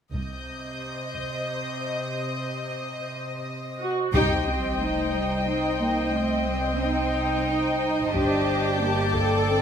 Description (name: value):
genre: cinematic, suspense film score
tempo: 90 BPM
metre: 3/4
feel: straight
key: unclear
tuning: A4 = 440 Hz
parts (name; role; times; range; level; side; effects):
- warm symphonic violin section; melody; 0.1-9.6 s; Eb5 to A5; -35 LUFS; left 1 dB; none
- ethereal airy pad; sustained chords; 0.5-9.6 s; C5 to D6; -32 LUFS; left 2 dB; ensemble chorus, built-in reverb
- warm symphonic cello section; bass; 0.1-9.6 s; C3 to Eb4; -30 LUFS; right 1 dB; none
- warm symphonic double bass section; bass; 0.1-0.8, 4.1-9.6 s; G1 to C2; -30 LUFS; right 2 dB; none
- taiko ensemble; drums; 0.1-9.4 s; none; -32 LUFS; equal; none
- warm symphonic violin section; texture; 0.1-3.8, 8.2-9.6 s; A5 to G6; -36 LUFS; left 3 dB; none
- dark symphonic viola section; accompaniment; 3.8-9.6 s; C4 to A4; -27 LUFS; equal; none
- warm symphonic violin section; second line; 4.1-9.6 s; D5 to G5; -29 LUFS; left 1 dB; none
- sub drop; sound effects; 4.1-6.1 s; none; -34 LUFS; left 1 dB; none
room: moderate scoring stage reverb, RT60 1.9 s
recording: close, detailed microphones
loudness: -23 LUFS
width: side -8 dB against mid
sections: 0.1-4.1 A section; 4.1-9.6 B section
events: band accent 4.1-4.8; impact 4.1-6.1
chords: 0.1 Cm; 8.1 Gmadd9